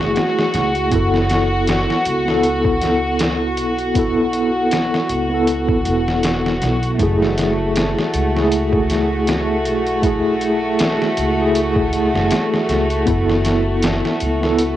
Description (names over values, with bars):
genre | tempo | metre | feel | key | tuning
trip hop | 79 BPM | 4/4 | swing 56% on 16ths | F# minor | A4 = 440 Hz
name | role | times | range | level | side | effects
mellow tine electric piano | accompaniment | 0.0-14.8 s | A3 to A4 | -19 LUFS | equal | medium stereo tremolo, cassette tape, tape echo
warm studio violin section | sustained chords | 0.0-14.8 s | A3 to F#4 | -21 LUFS | equal | cassette tape
upright bass | bass | 0.0-14.8 s | E1 to C#2 | -23 LUFS | equal | none
trip hop sampler-style drum kit | drums | 0.0-14.8 s | hi-hat, kick drum, snare drum | -22 LUFS | equal | overdrive, studio reverb, cassette tape
room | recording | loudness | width
light reverb | home recording on cassette | -15 LUFS | side -12 dB against mid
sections
0.0-14.8 A section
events
none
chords
0.0 F#m7; 0.9 Asus2/F#; 7.0 F#m7; 13.1 Asus2/F#